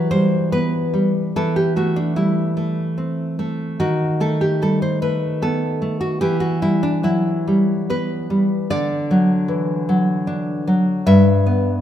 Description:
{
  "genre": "romantic piece for solo classical guitar",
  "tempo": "74 BPM",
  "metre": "3/4",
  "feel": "rubato",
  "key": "E minor",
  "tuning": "A4 = 440 Hz",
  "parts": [
    { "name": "nylon-string guitar", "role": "solo", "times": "0.0-11.8 s", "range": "G2 to E5", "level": "-17 LUFS", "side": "equal", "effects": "none" }
  ],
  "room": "moderate scoring stage reverb, RT60 1.5 s",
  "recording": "minimal, uncompressed stereo recording",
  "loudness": "-17 LUFS",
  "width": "side -10 dB against mid",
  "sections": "0.0-11.8 A section",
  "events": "none",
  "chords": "0.0 Em; 1.4 Emadd11; 3.8 B7/D#; 6.2 Em; 8.7 D; 11.1 G",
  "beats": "0.53 | 1.36 2.18 2.99 | 3.79 4.61 5.42 | 6.22 7.03 7.90 | 8.70 9.49 10.28 | 11.07"
}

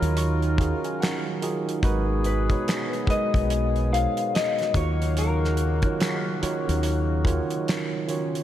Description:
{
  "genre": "R&B, neo-soul",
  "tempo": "72 BPM",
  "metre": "4/4",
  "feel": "swing 62% on 16ths",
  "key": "unclear",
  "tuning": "A4 = 440 Hz",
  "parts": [
    { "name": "electric guitar through a small old amp", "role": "melody", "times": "0.0-6.4 s", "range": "A#4 to E#5", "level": "-29 LUFS", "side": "left 4 dB", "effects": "lush chorus, diffuse ambient delay" },
    { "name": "tine electric piano", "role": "accompaniment", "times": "0.0-8.4 s", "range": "D#3 to C#6", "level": "-28 LUFS", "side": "right 4 dB", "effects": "none" },
    { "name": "warm analog pad", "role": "sustained chords", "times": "0.0-8.4 s", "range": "B2 to E#5", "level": "-33 LUFS", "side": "right 1 dB", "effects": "chorus" },
    { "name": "dark horn section", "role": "stabs", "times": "0.0-8.0 s", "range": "C#3 to A#4", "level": "-35 LUFS", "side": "left 4 dB", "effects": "diffuse ambient delay" },
    { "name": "deep dub fingered electric bass", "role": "bass", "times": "0.0-7.4 s", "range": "G#1 to D#2", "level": "-24 LUFS", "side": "equal", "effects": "none" },
    { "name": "damped 70s drum kit", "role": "drums", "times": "0.0-8.4 s", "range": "finger snaps, hi-hat, kick drum, snare drum", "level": "-28 LUFS", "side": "equal", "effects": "none" }
  ],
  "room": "moderate lush hall reverb, RT60 2.8 s",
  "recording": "dreamy mix soaked in reverb",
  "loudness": "-22 LUFS",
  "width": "side -11 dB against mid",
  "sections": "0.0-8.4 A section",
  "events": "tine electric piano fill 0.0-1.8",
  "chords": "0.0 D#m9; 1.8 G#m9; 4.7 D#m9",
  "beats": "0.16 0.99 | 1.83 2.66 3.50 4.33 | 5.16 6.00 6.83 7.66"
}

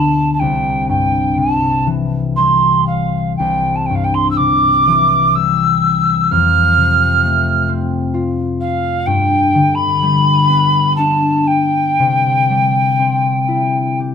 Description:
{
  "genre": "celtic folk, Celtic slow air",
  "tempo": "58-66 BPM",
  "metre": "3/4",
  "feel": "rubato",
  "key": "unclear",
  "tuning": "A4 = 441 Hz",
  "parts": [
    { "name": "mellow hollow mid whistle", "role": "melody", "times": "0.0-14.0 s", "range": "F5 to F6", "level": "-14 LUFS", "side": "right 1 dB", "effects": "none" },
    { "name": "concert harp", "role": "accompaniment", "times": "0.0-14.1 s", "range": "C2 to G4", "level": "-16 LUFS", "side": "left 3 dB", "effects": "none" }
  ],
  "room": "moderate recital hall reverb, RT60 1.5 s",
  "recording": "close, detailed microphones",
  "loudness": "-12 LUFS",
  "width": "side -7 dB against mid",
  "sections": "0.0-14.1 A section",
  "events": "none",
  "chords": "0.4 C; 6.3 F; 9.1 G; 12.0 C",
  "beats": "| 0.41 1.38 2.38 | 3.40 4.39 5.36 | 6.31 7.24 8.15 | 9.08 10.02 11.00 | 11.99 12.99 14.00"
}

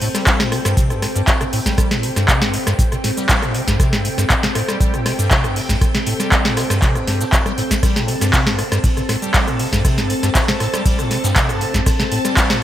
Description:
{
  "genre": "acid house",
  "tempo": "119 BPM",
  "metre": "4/4",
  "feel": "straight",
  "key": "A minor",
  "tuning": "A4 = 440 Hz",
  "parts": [
    { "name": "string machine, full ensemble", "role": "sustained chords", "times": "0.0-12.6 s", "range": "C4 to A5", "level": "-24 LUFS", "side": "equal", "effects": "ensemble chorus, sidechain pumping" },
    { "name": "acid bass, square", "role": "riff", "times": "0.0-12.6 s", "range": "G2 to A3", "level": "-21 LUFS", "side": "equal", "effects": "tube saturation, wide subtle chorus, sidechain pumping, digital delay" },
    { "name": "booming analog drum machine", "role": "drums", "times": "0.0-12.6 s", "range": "handclaps, hi-hat, ride cymbal, rim click, shaker, snare drum", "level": "-19 LUFS", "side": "equal", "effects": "overdrive" },
    { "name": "jazz brush drum kit", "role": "drums", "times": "0.0-12.5 s", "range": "hi-hat, snare drum", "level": "-31 LUFS", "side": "equal", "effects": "none" },
    { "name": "electronic kick drum", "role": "drums", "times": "0.3-12.5 s", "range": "none", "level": "-18 LUFS", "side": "equal", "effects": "overdrive" }
  ],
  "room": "light reverb",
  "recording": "bright 1980s-style digital production",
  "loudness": "-14 LUFS",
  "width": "side -12 dB against mid",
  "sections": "0.0-12.6 A section",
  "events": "none",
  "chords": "0.0 Am7",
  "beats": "0.27 0.77 1.28 | 1.78 2.28 2.79 3.29 | 3.80 4.30 4.80 5.31 | 5.81 6.32 6.82 7.33 | 7.83 8.34 8.84 9.34 | 9.85 10.35 10.86 11.36 | 11.86 12.37"
}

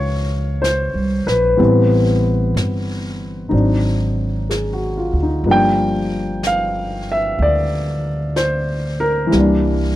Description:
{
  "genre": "jazz ballad",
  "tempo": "62 BPM",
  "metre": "4/4",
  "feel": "swing 67% on 8ths",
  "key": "unclear",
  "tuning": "A4 = 441 Hz",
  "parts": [
    { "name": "warm grand piano", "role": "accompaniment", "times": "0.0-10.0 s", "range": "E3 to G5", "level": "-17 LUFS", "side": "left 1 dB", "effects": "none" },
    { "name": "upright bass", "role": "bass", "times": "0.0-10.0 s", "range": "G1 to D2", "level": "-20 LUFS", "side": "right 1 dB", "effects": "none" },
    { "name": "jazz brush drum kit", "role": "drums", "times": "0.6-10.0 s", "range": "brushed snare drum, hi-hat, snare drum", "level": "-31 LUFS", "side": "equal", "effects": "none" }
  ],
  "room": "little or no reverb",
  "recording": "dry, close 1970s-style studio recording",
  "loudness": "-15 LUFS",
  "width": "side -14 dB against mid",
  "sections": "0.0-10.0 A section",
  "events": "none",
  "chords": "0.0 Bbm9; 1.6 Am9; 3.5 Ab7#11; 5.5 Gm7; 9.3 C9",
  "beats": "0.63 | 1.59 2.56 3.53 4.50 | 5.47 6.44 7.41 8.37 | 9.33"
}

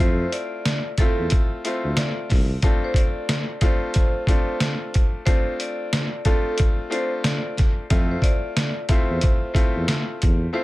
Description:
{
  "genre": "hip hop, boom-bap hip-hop",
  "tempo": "91 BPM",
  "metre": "4/4",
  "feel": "swing 62% on 16ths",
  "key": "D minor",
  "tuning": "A4 = 440 Hz",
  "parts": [
    { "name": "vibraphone with medium hard mallets", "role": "melody", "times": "0.0-10.6 s", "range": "A4 to D5", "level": "-30 LUFS", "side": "equal", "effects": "high-pass filter, low-pass filter, tape echo" },
    { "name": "bright upright piano", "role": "accompaniment", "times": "0.0-10.6 s", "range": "A3 to F4", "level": "-28 LUFS", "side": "left 2 dB", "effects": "cassette tape, high-pass filter, low-pass filter" },
    { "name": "mellow tuba", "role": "bass", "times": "0.0-2.6, 7.9-10.5 s", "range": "C2 to F2", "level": "-24 LUFS", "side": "equal", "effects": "none" },
    { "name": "trip hop sampler-style drum kit", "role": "drums", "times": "0.3-10.4 s", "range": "hi-hat, kick drum, snare drum", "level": "-20 LUFS", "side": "equal", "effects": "none" }
  ],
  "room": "little or no reverb",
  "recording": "none",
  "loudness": "-19 LUFS",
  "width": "side -18 dB against mid",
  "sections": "0.0-10.6 A section",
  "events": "none",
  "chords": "0.0 Fmaj7; 2.6 Dm7; 7.9 Fmaj7",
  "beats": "0.65 1.31 1.97 | 2.63 3.29 3.95 4.61 | 5.27 5.92 6.58 7.24 | 7.90 8.56 9.22 9.88 | 10.54"
}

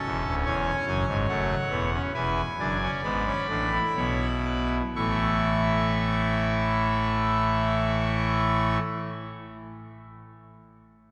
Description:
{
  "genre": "classical, baroque-style 4-part fugue for pipe organ",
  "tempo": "58-76 BPM",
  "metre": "3/4",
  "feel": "straight",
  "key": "A major",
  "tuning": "A4 = 440 Hz",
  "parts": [
    { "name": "pipe organ, trumpet", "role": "solo", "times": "0.0-8.8 s", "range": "D1 to C#6", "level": "-26 LUFS", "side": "equal", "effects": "none" }
  ],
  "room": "wet cathedral reverb, RT60 4.6 s",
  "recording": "none",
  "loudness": "-26 LUFS",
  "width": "mono",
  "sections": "0.0-5.0 A section; 5.0-8.0 B section",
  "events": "slowing down 0.0-5.0",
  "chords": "0.0 F#m; 1.3 A69; 2.1 E7; 5.0 A",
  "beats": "0.47 1.29 | 2.14 3.03 3.96 | 4.96 5.98 7.00"
}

